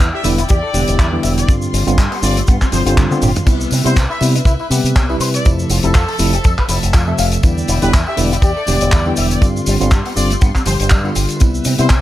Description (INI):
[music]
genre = nu-disco, nu disco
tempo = 121 BPM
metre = 4/4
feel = swing 56% on 16ths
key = C major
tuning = A4 = 440 Hz
[part]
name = brilliant trumpet section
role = melody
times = 0.0-11.9 s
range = A4 to E5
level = -24 LUFS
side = equal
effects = tape echo
[part]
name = rich chamber string section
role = sustained chords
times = 0.0-12.0 s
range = F3 to C6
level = -28 LUFS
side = left 2 dB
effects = sidechain pumping
[part]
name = electric guitar with an envelope filter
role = riff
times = 0.0-12.0 s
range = F3 to F5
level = -25 LUFS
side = left 3 dB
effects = ensemble chorus
[part]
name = fingered electric bass with an envelope filter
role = bass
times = 0.0-12.0 s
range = E1 to C3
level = -18 LUFS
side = equal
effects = sidechain pumping
[part]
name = damped 70s drum kit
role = drums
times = 0.0-12.0 s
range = crash cymbal, handclaps, hi-hat, shaker, toms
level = -21 LUFS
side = left 1 dB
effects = none
[part]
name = kick drum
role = drums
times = 0.0-12.0 s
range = none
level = -12 LUFS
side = equal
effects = none
[part]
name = mellow tine electric piano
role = accompaniment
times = 0.2-11.9 s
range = C3 to E5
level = -19 LUFS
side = equal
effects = medium stereo tremolo
[part]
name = tambourine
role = percussion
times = 3.5-12.0 s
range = none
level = -32 LUFS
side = right 2 dB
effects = none
[sound]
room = little or no reverb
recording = none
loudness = -12 LUFS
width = side -14 dB against mid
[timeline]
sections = 0.0-12.0 A section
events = drum fill 3.0-3.5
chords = 0.0 Em7; 1.5 G7sus4; 3.5 Cmaj7; 5.5 Fmaj7; 7.4 Em7; 9.4 G7sus4; 11.4 Cmaj7